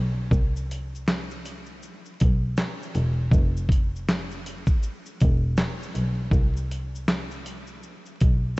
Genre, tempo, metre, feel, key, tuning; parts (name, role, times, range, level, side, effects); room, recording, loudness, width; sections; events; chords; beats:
lo-fi hip hop; 80 BPM; 4/4; swing 63% on 16ths; C major; A4 = 440 Hz
muted double bass; bass; 0.0-8.5 s; E1 to C2; -26 LUFS; equal
dusty soul sampler-style drum kit; drums; 0.3-8.6 s; handclaps, hi-hat, kick drum, shaker, snare drum; -24 LUFS; equal
little or no reverb; vinyl crackle, nothing above 8.0 kHz; -22 LUFS; side -23 dB against mid
0.0-8.6 A section
| 0.31 1.06 1.81 2.56 | 3.31 4.06 4.81 5.56 | 6.31 7.06 7.81 8.56